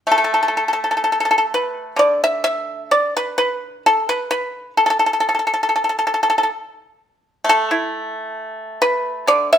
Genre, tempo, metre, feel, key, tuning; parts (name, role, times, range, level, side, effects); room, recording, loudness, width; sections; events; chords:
chinese traditional, Chinese solo plucked strings; 65 BPM; 4/4; rubato; A4 = 440 Hz
pipa; solo; 0.1-9.6 s; D3 to E5; -16 LUFS; equal
light reverb; band playing live in one room; -16 LUFS; side -9 dB against mid
0.1-9.6 A section